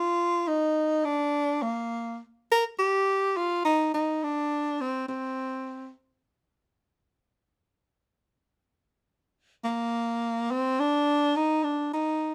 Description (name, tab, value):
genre	mexican folk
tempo	free time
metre	none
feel	none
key	Eb major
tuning	A4 = 438 Hz
part	warm tenor saxophone	solo	0.0-5.9, 9.6-12.3 s	Bb3 to Bb4	-27 LUFS	equal	none
room	light reverb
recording	none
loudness	-27 LUFS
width	mono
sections	0.0-12.3 A section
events	none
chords	none